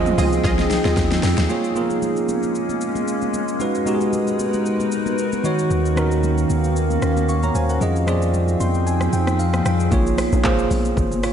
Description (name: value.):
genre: amapiano.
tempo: 114 BPM.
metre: 4/4.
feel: swing 55% on 16ths.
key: Bb minor.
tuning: A4 = 440 Hz.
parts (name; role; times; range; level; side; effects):
bell-like tine electric piano; accompaniment; 0.0-11.3 s; Eb3 to Db6; -21 LUFS; right 3 dB; wide subtle chorus.
glassy FM pad; sustained chords; 0.0-9.9 s; Eb3 to G5; -24 LUFS; left 2 dB; ensemble chorus, built-in reverb, sidechain pumping.
punchy chord stab; stabs; 0.0-1.0 s; F4 to Eb5; -29 LUFS; right 1 dB; chorus, diffuse ambient delay.
hollow log drum bass; bass; 0.0-1.5, 9.9-11.3 s; Ab1 to F2; -21 LUFS; equal; none.
deep house drum kit; drums; 0.1-11.3 s; handclaps, hi-hat, kick drum, rim click, shaker, snare drum, toms; -27 LUFS; equal; overdrive.
congas; percussion; 0.2-11.2 s; none; -31 LUFS; left 4 dB; none.
punchy sub bass; bass; 5.7-9.9 s; Eb2 to F2; -20 LUFS; equal; none.
room: moderate lush hall reverb, RT60 2.7 s.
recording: dreamy mix soaked in reverb, nothing above 10.9 kHz.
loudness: -17 LUFS.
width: side -8 dB against mid.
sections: 0.0-1.5 A section; 1.5-9.9 B section; 9.9-11.3 A section.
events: drop 0.0-1.5, 9.9-11.3; drum fill 0.4-1.5; tine electric piano fill 8.3-9.9; kick muted 8.9-9.9.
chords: 0.0 Fm7; 1.5 Bbm7; 3.6 Abm7; 5.4 Ebm7; 7.8 Fm7; 9.9 Bbm7.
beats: 0.44 0.97 | 1.50 2.02 2.55 3.08 | 3.60 4.13 4.65 5.18 | 5.71 6.23 6.76 7.29 | 7.81 8.34 8.87 9.39 | 9.92 10.44 10.97.